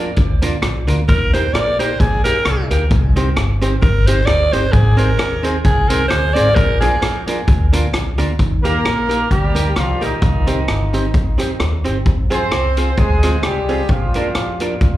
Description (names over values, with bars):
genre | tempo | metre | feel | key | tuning
ska | 131 BPM | 4/4 | swing 56% on 8ths | Eb major | A4 = 444 Hz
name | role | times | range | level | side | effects
archtop guitar, miked and amplified | accompaniment | 0.0-14.7 s | Bb3 to C5 | -23 LUFS | right 2 dB | tape echo, slapback echo
upright bass | bass | 0.0-15.0 s | G1 to F2 | -18 LUFS | equal | none
street-band drum kit | drums | 0.2-14.9 s | hi-hat, kick drum, rim click | -18 LUFS | equal | none
raspy alto saxophone | melody | 1.1-7.2 s | Ab4 to D5 | -19 LUFS | equal | tape echo, slapback echo
warm horn section | melody | 8.6-14.8 s | Eb3 to C5 | -20 LUFS | equal | tape echo, slapback echo
room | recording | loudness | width
small room ambience | live gig heard through the venue's PA, club reverb | -13 LUFS | side -14 dB against mid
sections
0.0-8.4 A section; 8.4-15.0 B section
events
alto saxophone solo 0.0-8.4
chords
0.0 Bb; 1.1 Eb; 2.9 Cm; 4.7 Ab; 6.6 Bb; 8.4 Eb; 10.2 Cm; 12.1 Fm; 13.9 Bb